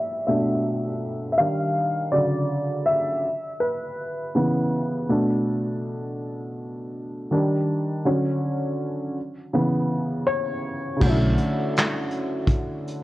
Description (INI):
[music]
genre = lo-fi hip hop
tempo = 81 BPM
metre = 4/4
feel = swing 62% on 16ths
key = B minor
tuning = A4 = 438 Hz
[part]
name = warm upright piano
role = accompaniment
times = 0.0-13.0 s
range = B2 to E#5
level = -22 LUFS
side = equal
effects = cassette tape, low-pass filter
[part]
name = upright bass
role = bass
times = 11.0-11.3 s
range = B1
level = -22 LUFS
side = equal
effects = none
[part]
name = vintage brush drum kit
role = drums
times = 11.0-13.0 s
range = crash cymbal, handclaps, hi-hat, kick drum, snare drum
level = -23 LUFS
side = equal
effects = vintage 12-bit sampler grit
[sound]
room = light reverb, studio ambience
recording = worn, warbling old tape, cassette tape, warbly pitch drift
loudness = -22 LUFS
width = side -17 dB against mid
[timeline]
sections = 0.0-11.0 A section; 11.0-13.0 B section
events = upright piano solo 0.0-11.0; filter sweep on upright piano 0.0-11.0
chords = 0.0 Bm7; 1.4 D#maj9; 2.1 Dmaj7; 3.2 C#m7; 5.1 Bm7; 7.3 D#maj7; 8.0 Dmaj7; 9.2 C#m7; 11.0 Bm11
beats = 0.64 1.38 | 2.12 2.86 3.60 4.34 | 5.09 5.83 6.57 7.31 | 8.05 8.79 9.53 10.27 | 11.01 11.75 12.49